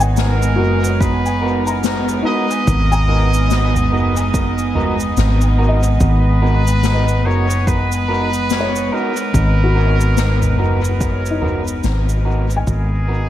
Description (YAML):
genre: ambient dub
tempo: 72 BPM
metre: 4/4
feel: swing 59% on 16ths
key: G# minor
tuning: A4 = 440 Hz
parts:
  - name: clear studio string section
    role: sustained chords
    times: 0.0-13.3 s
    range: G#3 to D#4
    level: -27 LUFS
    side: equal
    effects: none
  - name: felt-muted upright piano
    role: arpeggios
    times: 0.0-13.3 s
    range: D#4 to A#5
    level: -26 LUFS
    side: left 3 dB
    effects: dub echo
  - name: hollow-body short-scale fingered electric bass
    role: bass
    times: 0.0-13.3 s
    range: F#1 to G#1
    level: -16 LUFS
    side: equal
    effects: none
  - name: soft-mallet drum kit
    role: drums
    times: 0.0-12.9 s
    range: cabasa, snare drum, toms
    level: -25 LUFS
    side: left 3 dB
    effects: dub echo
  - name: drifting glass-harmonics texture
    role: texture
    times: 0.0-13.3 s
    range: B3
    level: -24 LUFS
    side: right 4 dB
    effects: chorus, built-in reverb
  - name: trumpet with straight mute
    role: melody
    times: 0.2-13.3 s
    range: G#4 to D#5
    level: -23 LUFS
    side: equal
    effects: dub echo
  - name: electric guitar through a small old amp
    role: stabs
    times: 0.6-13.3 s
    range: B3 to A#4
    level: -26 LUFS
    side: right 2 dB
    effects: dub echo
  - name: electronic kick drum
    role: drums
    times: 1.0-12.9 s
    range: none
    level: -20 LUFS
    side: equal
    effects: overdrive
room: small room ambience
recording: echo-heavy mix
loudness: -14 LUFS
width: side -12 dB against mid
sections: 0.0-13.3 A section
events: fade-out 10.4-13.3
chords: 0.0 G#m7